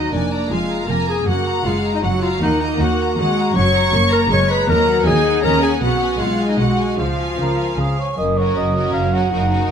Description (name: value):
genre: classical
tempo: 158 BPM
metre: 3/4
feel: straight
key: Eb minor, F# major from 3.6 s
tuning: A4 = 438 Hz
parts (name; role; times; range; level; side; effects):
- warm symphonic violin section; melody; 0.0-9.7 s; A#4 to C#6; -27 LUFS; left 3 dB; none
- mellow clarinet; second line; 0.0-8.0 s; D4 to C#5; -20 LUFS; left 2 dB; none
- warm symphonic violin section; second line; 0.0-9.7 s; F#4 to C#6; -23 LUFS; equal; none
- clear symphonic viola section; accompaniment; 0.0-9.7 s; E#3 to D#4; -23 LUFS; left 1 dB; none
- rich studio cello section; bass; 0.0-9.7 s; Eb2 to C#3; -23 LUFS; right 1 dB; none
- warm studio double bass section; bass; 0.0-9.7 s; F1 to Eb2; -23 LUFS; right 2 dB; none
- dark cor anglais; second line; 7.4-9.7 s; G#4 to F#5; -22 LUFS; right 2 dB; none
- mellow French horn section; sustained chords; 8.2-9.7 s; D#4 to A#4; -23 LUFS; right 2 dB; none
room: moderate scoring stage reverb, RT60 1.8 s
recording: none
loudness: -15 LUFS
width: side -7 dB against mid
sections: 0.0-8.2 A section; 8.2-9.7 B section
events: none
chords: 0.1 Bb5/F; 1.3 Gbmaj9; 2.4 Ebm; 3.6 F#; 4.7 D#m7; 5.8 G#m7/B; 7.0 C#; 8.2 F#